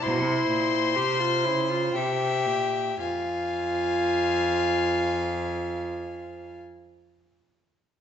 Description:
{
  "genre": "classical, baroque-style fugue for string quartet",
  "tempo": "55-66 BPM",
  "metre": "3/4",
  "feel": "straight",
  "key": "F minor",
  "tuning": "A4 = 438 Hz",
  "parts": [
    { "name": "rich violin", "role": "melody", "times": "0.0-6.6 s", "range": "G5 to C6", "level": "-29 LUFS", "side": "left 10 dB", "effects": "none" },
    { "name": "rich violin", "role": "second line", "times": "0.0-6.6 s", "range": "C5 to F5", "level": "-30 LUFS", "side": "left 1 dB", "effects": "none" },
    { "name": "warm viola", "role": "accompaniment", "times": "0.0-6.6 s", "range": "E4 to G4", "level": "-27 LUFS", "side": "right 1 dB", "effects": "none" },
    { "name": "rich cello", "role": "bass", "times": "0.0-6.6 s", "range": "F2 to Db3", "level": "-32 LUFS", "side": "right 4 dB", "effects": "none" }
  ],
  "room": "moderate recital hall reverb, RT60 1.4 s",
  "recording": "nothing above 8.0 kHz",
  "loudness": "-23 LUFS",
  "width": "side -8 dB against mid",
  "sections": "0.0-3.0 A section; 3.0-6.3 B section",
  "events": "slowing down 0.0-3.0",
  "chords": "0.0 C7; 3.0 Fm"
}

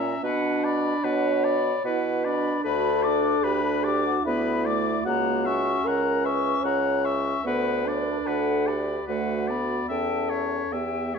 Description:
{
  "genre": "classical, slow romantic movement for wind quintet",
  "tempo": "74 BPM",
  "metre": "3/4",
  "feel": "rubato",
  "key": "B minor",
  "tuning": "A4 = 440 Hz",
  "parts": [
    { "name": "silver concert flute", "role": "melody", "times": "0.0-11.2 s", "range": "E5 to D6", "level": "-30 LUFS", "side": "left 6 dB", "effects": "none" },
    { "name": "clear oboe", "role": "second line", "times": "0.0-11.2 s", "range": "B4 to F#5", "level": "-31 LUFS", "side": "left 4 dB", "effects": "none" },
    { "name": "mellow clarinet", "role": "accompaniment", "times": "0.0-11.2 s", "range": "A3 to F#4", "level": "-30 LUFS", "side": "right 4 dB", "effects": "none" },
    { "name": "warm French horn", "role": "accompaniment", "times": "0.0-11.2 s", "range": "C#4 to C#5", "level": "-28 LUFS", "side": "left 1 dB", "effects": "none" },
    { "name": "warm bassoon", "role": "bass", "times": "0.0-11.2 s", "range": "C#2 to B2", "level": "-28 LUFS", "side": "right 2 dB", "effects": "none" }
  ],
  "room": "wet stone room reverb, RT60 1.0 s",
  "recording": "minimal, uncompressed stereo recording",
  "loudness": "-22 LUFS",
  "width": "side -6 dB against mid",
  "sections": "0.0-11.2 A section",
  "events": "none",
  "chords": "0.2 Bm; 2.6 Bm/D; 5.1 F#7/C#; 7.5 Bm/D; 9.9 C#dim/E"
}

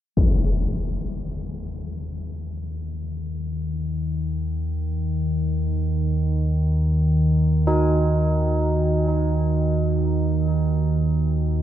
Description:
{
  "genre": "dark ambient drone",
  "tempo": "free time",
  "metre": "none",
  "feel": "none",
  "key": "unclear",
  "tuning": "A4 = 440 Hz",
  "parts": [
    { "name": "deep rumbling drone", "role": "drone", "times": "1.2-11.6 s", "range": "Eb2 to Eb3", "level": "-21 LUFS", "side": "equal", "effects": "built-in reverb" },
    { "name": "carillon bells", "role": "arpeggios", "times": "7.7-11.6 s", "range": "Eb4", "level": "-24 LUFS", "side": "right 1 dB", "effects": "diffuse ambient delay" }
  ],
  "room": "wet huge ambient reverb, RT60 8.6 s",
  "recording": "in a vast, echoing space",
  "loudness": "-20 LUFS",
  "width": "side -11 dB against mid",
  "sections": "0.2-11.6 A section",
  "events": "none",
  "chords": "none"
}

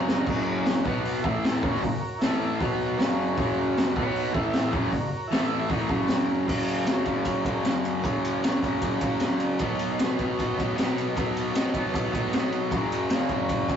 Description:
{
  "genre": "garage rock duo or trio",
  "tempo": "154 BPM",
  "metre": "4/4",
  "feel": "straight",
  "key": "F# mixolydian",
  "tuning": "A4 = 440 Hz",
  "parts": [
    { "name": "combo organ", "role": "sustained chords", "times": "0.0-13.8 s", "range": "E4 to A#5", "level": "-35 LUFS", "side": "right 1 dB", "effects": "none" },
    { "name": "fuzz guitar", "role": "riff", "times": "0.0-13.8 s", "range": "F#2 to B3", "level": "-26 LUFS", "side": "equal", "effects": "distortion" },
    { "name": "raw garage drum kit", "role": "drums", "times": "0.1-13.8 s", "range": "crash cymbal, hi-hat, kick drum, ride cymbal, snare drum", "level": "-27 LUFS", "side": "equal", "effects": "none" }
  ],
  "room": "moderate studio reverb, RT60 0.6 s",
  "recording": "rough rehearsal-room recording, warm saturation, nothing above 7.8 kHz",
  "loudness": "-23 LUFS",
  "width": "side -8 dB against mid",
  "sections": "0.0-6.5 A section; 6.5-13.8 B section",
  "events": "transistor combo organ fill 0.0; drum fill 0.0",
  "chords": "0.0 F#; 0.9 B5; 1.2 A5; 1.6 F#; 2.2 A5; 2.6 B5; 3.0 F#; 4.0 B5; 4.3 A5; 4.7 F#; 5.3 A5; 5.7 F#; 9.6 B; 12.7 F#"
}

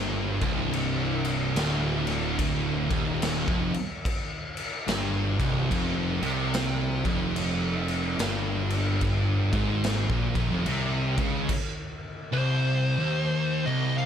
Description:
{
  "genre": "stoner and doom metal",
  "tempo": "72 BPM",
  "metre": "4/4",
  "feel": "swing 62% on 8ths",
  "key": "C minor",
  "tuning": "A4 = 440 Hz",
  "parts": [
    { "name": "high-gain distorted guitar", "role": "riff", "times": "0.0-14.1 s", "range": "C2 to Db3", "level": "-32 LUFS", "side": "right 2 dB", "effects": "distortion" },
    { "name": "thick fuzz guitar", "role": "riff", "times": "0.0-14.1 s", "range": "C2 to Db3", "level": "-30 LUFS", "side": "left 7 dB", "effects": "distortion" },
    { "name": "thick fuzz guitar", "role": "riff", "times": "0.0-14.1 s", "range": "C2 to Db3", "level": "-30 LUFS", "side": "right 7 dB", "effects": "distortion" },
    { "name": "fuzz picked electric bass", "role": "bass", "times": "0.0-11.5 s", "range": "C1 to Db2", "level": "-32 LUFS", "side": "equal", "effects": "overdrive" },
    { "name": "raw garage drum kit", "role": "drums", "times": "0.4-11.7 s", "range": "crash cymbal, kick drum, snare drum", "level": "-30 LUFS", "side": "equal", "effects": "none" },
    { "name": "fuzz lead guitar", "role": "melody", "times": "12.3-14.1 s", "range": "C5 to F5", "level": "-29 LUFS", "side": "equal", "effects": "distortion, ping-pong delay" }
  ],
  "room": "light reverb, small room ambience",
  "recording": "none",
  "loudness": "-24 LUFS",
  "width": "side -8 dB against mid",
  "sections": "0.0-12.3 A section; 12.3-14.1 B section",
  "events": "stop 11.5-12.3",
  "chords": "0.0 Cm; 5.7 F5; 12.3 Cm"
}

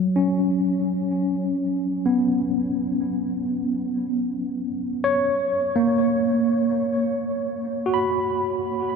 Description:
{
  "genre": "ambient",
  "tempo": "free time",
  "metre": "none",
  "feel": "none",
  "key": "unclear",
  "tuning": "A4 = 441 Hz",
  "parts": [
    { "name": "tine electric piano", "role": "solo", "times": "0.0-9.0 s", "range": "F#3 to B5", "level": "-21 LUFS", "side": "equal", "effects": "medium stereo tremolo, diffuse ambient delay" }
  ],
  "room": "wet huge ambient reverb, RT60 7.9 s",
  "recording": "none",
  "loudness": "-21 LUFS",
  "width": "side -5 dB against mid",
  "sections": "0.0-9.0 A section",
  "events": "none",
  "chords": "0.0 F#sus4; 5.3 F#add11"
}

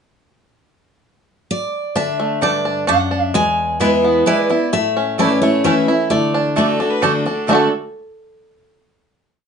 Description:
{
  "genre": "bluegrass",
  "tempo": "130 BPM",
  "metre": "3/4",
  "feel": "straight",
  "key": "D major",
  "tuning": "A4 = 440 Hz",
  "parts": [
    { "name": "picked steel-string acoustic guitar", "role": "melody", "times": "1.5-7.0 s", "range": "C#5 to G#5", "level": "-20 LUFS", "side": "left 1 dB", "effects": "none" },
    { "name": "picked steel-string acoustic guitar", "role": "accompaniment", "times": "2.0-7.7 s", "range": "E2 to F#4", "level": "-18 LUFS", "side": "left 2 dB", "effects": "none" },
    { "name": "bluegrass banjo", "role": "arpeggios", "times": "2.0-7.7 s", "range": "G#3 to A4", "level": "-20 LUFS", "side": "right 3 dB", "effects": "none" },
    { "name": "mandolin", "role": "stabs", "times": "2.4-7.7 s", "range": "A3 to A5", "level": "-20 LUFS", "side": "right 5 dB", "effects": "none" },
    { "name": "clear fiddle", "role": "second line", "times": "6.6-7.7 s", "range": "A4 to B4", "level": "-24 LUFS", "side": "left 2 dB", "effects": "none" }
  ],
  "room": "wet small room reverb, RT60 0.5 s",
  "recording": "nothing above 10.5 kHz",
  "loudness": "-14 LUFS",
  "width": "side -6 dB against mid",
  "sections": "0.6-2.0 pickup bar; 2.0-7.5 A section; 7.5-8.9 final chord",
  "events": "none",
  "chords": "0.6 N.C.; 2.0 D; 3.3 E; 4.7 A; 6.1 D"
}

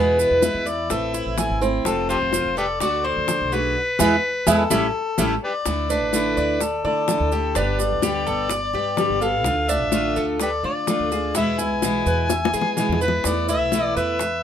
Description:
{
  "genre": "latin, Cuban son and guajira",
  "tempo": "126 BPM",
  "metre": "4/4",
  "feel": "straight",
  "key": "A harmonic minor",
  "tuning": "A4 = 444 Hz",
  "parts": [
    { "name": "overdriven harmonica", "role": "melody", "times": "0.0-14.4 s", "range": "G4 to G#5", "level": "-24 LUFS", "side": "left 3 dB", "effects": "none" },
    { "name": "fingerpicked steel-string acoustic guitar", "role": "accompaniment", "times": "0.0-14.2 s", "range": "B2 to G4", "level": "-25 LUFS", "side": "left 1 dB", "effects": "none" },
    { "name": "Cuban tres", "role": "arpeggios", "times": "0.0-14.4 s", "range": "B3 to E5", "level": "-24 LUFS", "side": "right 3 dB", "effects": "none" },
    { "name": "upright bass", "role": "bass", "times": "0.0-14.4 s", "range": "F1 to E3", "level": "-28 LUFS", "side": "right 1 dB", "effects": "none" },
    { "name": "bongos", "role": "percussion", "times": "0.2-14.4 s", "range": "none", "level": "-26 LUFS", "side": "left 5 dB", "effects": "none" },
    { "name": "maracas", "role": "percussion", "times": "0.2-14.4 s", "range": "none", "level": "-29 LUFS", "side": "right 10 dB", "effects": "none" }
  ],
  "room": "moderate studio reverb, RT60 0.5 s",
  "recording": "minimal, uncompressed stereo recording",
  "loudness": "-19 LUFS",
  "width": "side -9 dB against mid",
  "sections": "0.0-5.7 A section; 5.7-14.4 B section",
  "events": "band accent 3.8-5.7; drum fill 12.3-13.3",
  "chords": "0.0 E; 0.9 Am; 1.9 F; 2.8 D; 3.8 E; 4.7 A7; 5.7 Dsus2; 7.6 Gadd9; 9.5 Dm; 11.4 E; 13.3 Esus4"
}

